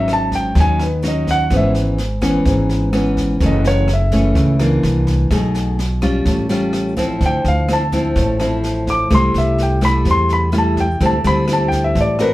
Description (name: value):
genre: bossa nova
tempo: 126 BPM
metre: 4/4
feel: straight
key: C# minor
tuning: A4 = 441 Hz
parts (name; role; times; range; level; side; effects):
- warm grand piano; melody; 0.0-12.3 s; B4 to D6; -19 LUFS; equal; none
- nylon-string guitar; accompaniment; 0.0-12.3 s; F#2 to Bb4; -18 LUFS; equal; none
- upright bass; bass; 0.0-12.3 s; F#1 to E2; -19 LUFS; equal; none
- jazz brush drum kit; drums; 0.1-12.3 s; kick drum, rim click, snare drum; -23 LUFS; equal; none
room: wet studio reverb, RT60 0.6 s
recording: heard from further back in the room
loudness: -14 LUFS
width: side -16 dB against mid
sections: 0.0-7.2 A section; 7.2-12.3 A section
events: grand piano solo 0.0-12.3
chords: 0.0 G#7sus4; 1.5 C#m7/G#; 3.4 F#m7; 4.8 C9; 5.3 B13; 6.3 A7b13; 7.2 Dm9; 9.1 Am7/C; 11.0 D9sus4